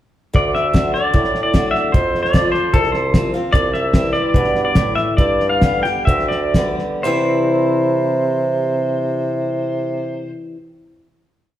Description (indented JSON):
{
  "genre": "honky-tonk and classic country",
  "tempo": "119-150 BPM",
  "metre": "4/4",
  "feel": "straight",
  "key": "C major",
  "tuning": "A4 = 442 Hz",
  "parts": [
    { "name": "picked old ladder-braced acoustic guitar", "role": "accompaniment", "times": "0.3-10.6 s", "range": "F2 to G4", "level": "-22 LUFS", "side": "left 2 dB", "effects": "none" },
    { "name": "warm bassoon", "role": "bass", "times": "0.3-10.3 s", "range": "C2 to C3", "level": "-21 LUFS", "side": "right 1 dB", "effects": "none" },
    { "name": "cloth-damped thuddy drum kit", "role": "drums", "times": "0.3-6.8 s", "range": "hi-hat, kick drum, snare drum", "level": "-18 LUFS", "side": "equal", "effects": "none" },
    { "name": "pedal steel guitar", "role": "melody", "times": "0.4-10.3 s", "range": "A4 to G5", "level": "-20 LUFS", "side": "equal", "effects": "none" }
  ],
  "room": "wet large studio reverb, RT60 1.4 s",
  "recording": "heard from further back in the room",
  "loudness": "-15 LUFS",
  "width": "side -12 dB against mid",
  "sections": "0.3-7.0 interlude; 7.0-11.1 final chord",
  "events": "slowing down 3.5-7.0",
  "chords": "0.3 D; 1.9 F; 3.5 C; 5.2 G; 7.0 C"
}